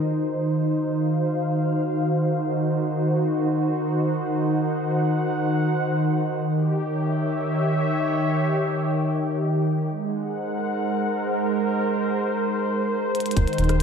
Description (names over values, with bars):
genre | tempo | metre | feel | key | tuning
IDM | free time | none | none | unclear | A4 = 439 Hz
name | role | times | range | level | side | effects
warm analog pad | sustained chords | 0.0-13.8 s | Eb3 to Gb5 | -21 LUFS | equal | chorus
concert harp | arpeggios | 0.0-1.8 s | Eb4 to Eb5 | -37 LUFS | right 1 dB | none
glitchy drum kit | drums | 13.1-13.8 s | hi-hat, rim click | -34 LUFS | left 2 dB | none
round analog bass | bass | 13.4-13.8 s | Eb1 | -21 LUFS | equal | none
electronic kick drum | drums | 13.4-13.5 s | none | -21 LUFS | left 1 dB | none
room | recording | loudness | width
wet lush hall reverb, RT60 1.9 s | dreamy mix soaked in reverb | -21 LUFS | side -6 dB against mid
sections
0.0-13.4 A section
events
drum fill 13.1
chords
0.0 Ebm6; 6.4 Eb7b9; 9.9 Ab7